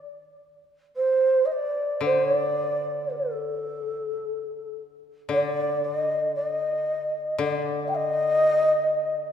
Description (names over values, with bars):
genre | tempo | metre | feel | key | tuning
japanese traditional, Japanese chamber music | 56 BPM | 4/4 | rubato | unclear | A4 = 439 Hz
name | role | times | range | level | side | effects
breathy mellow long shakuhachi | melody | 1.0-9.3 s | A4 to G5 | -23 LUFS | equal | none
koto | accompaniment | 2.0-9.3 s | D3 | -31 LUFS | left 5 dB | none
room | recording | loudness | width
wet concert hall reverb, RT60 2.5 s | minimal, uncompressed stereo recording | -22 LUFS | side -8 dB against mid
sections
1.0-9.3 A section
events
none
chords
none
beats
| 0.95 2.04 3.13 4.23 | 5.30 6.35 7.41 8.47